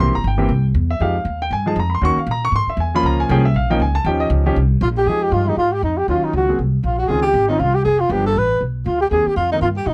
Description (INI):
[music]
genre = jazz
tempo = 237 BPM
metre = 4/4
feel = swing 59% on 8ths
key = F minor from 5.1 s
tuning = A4 = 442 Hz
[part]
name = warm baby grand piano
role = accompaniment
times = 0.0-9.6 s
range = Eb3 to Db6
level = -22 LUFS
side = equal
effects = none
[part]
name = upright bass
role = bass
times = 0.0-9.9 s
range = F1 to Bb2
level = -22 LUFS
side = equal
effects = none
[part]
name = mellow flugelhorn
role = melody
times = 4.8-9.9 s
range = Eb4 to B4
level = -21 LUFS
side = equal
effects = none
[part]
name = breathy tenor saxophone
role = second line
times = 4.8-9.9 s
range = Eb4 to B4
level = -25 LUFS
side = equal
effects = none
[sound]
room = little or no reverb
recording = dry, close 1970s-style studio recording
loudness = -18 LUFS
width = mono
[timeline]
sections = 0.0-5.1 A section; 5.1-9.9 B section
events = none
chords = 0.0 C7; 1.0 Fm9; 2.0 Ebm7; 2.5 E6; 3.0 Db6; 4.1 Eb9; 5.1 Fm9; 6.1 Ebm9; 6.6 Gbmaj7#11; 7.1 Dbmaj9; 8.1 G7; 9.1 Cm7